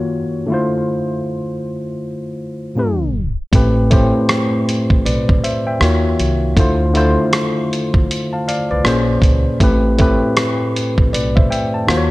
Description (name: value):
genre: lo-fi hip hop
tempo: 79 BPM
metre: 4/4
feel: swing 61% on 16ths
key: unclear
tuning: A4 = 443 Hz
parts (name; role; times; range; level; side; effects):
- tine electric piano; accompaniment; 0.0-12.1 s; A2 to A5; -16 LUFS; left 1 dB; overdrive, cassette tape, low-pass filter
- upright bass; bass; 3.5-12.1 s; A1 to Eb2; -18 LUFS; right 1 dB; none
- dusty soul sampler-style drum kit; drums; 3.5-12.1 s; hi-hat, kick drum, rim click; -16 LUFS; equal; none
room: little or no reverb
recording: cassette tape, tape stop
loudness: -14 LUFS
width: side -19 dB against mid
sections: 0.0-3.5 A section; 3.5-12.1 B section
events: tape stop 2.8-3.5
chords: 0.5 Dm7; 2.8 Bbm9; 3.5 Am9; 5.8 Ebm7; 6.6 Dm7; 8.8 Bbm9; 9.6 Am9